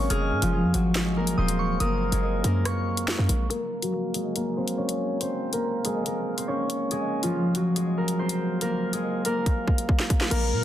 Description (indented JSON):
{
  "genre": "hip hop, drill",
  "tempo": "141 BPM",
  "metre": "4/4",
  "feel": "half-time",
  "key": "unclear",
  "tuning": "A4 = 441 Hz",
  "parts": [
    { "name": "concert harp", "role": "melody", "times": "0.0-10.6 s", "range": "F3 to Db5", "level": "-25 LUFS", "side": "equal", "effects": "low-pass filter, digital delay" },
    { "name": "glassy synth bell", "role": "second line", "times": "0.0-3.5 s", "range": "Db6 to F6", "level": "-34 LUFS", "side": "equal", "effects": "chorus, tremolo, digital delay" },
    { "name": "short 808-style bass", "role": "bass", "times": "0.0-3.5, 10.3-10.6 s", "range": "Eb1 to Bb2", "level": "-26 LUFS", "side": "equal", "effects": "none" },
    { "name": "drill drum kit", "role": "drums", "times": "0.1-10.4 s", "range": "crash cymbal, hi-hat, kick drum, rim click, snare drum", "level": "-26 LUFS", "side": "equal", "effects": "none" }
  ],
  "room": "light reverb, digital ambience",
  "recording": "dense, heavily limited modern master",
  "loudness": "-23 LUFS",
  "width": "side -12 dB against mid",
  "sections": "0.0-3.5 A section; 3.5-10.3 B section",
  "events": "filter sweep on harp 3.5-10.3; drum fill 9.5-10.3",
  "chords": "0.1 Fm; 1.8 Gb; 3.5 Bbm; 6.9 Fm; 8.6 Absus2"
}